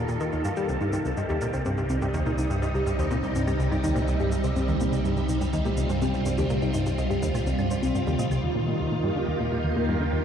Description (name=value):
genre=ambient, sequencer-driven space music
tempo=124 BPM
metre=4/4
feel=straight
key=unclear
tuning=A4 = 445 Hz
part: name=phased string machine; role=sustained chords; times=0.0-10.2 s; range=C3 to A4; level=-28 LUFS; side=right 1 dB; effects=ensemble chorus, phaser
part: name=plucky analog bass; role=riff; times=0.0-10.2 s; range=C2 to G3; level=-28 LUFS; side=equal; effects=analog delay
part: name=warm sub bass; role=bass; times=0.0-10.2 s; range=C2 to Eb2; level=-32 LUFS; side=equal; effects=none
part: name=soft round pluck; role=arpeggios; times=0.1-10.2 s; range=C4 to F5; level=-32 LUFS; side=left 2 dB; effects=chorus, auto-pan, analog delay
part: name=cabasa and claves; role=percussion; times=0.1-8.4 s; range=none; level=-46 LUFS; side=right 2 dB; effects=analog delay
part: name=bubbling stepped-filter texture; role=texture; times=8.4-10.2 s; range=Eb6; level=-53 LUFS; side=right 5 dB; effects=none
room=wet cathedral reverb, RT60 4.8 s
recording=in a vast, echoing space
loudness=-23 LUFS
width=side -8 dB against mid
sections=0.0-8.4 A section; 8.4-10.2 A section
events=none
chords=0.0 Ebadd9; 0.7 Cm7; 8.4 Ebadd9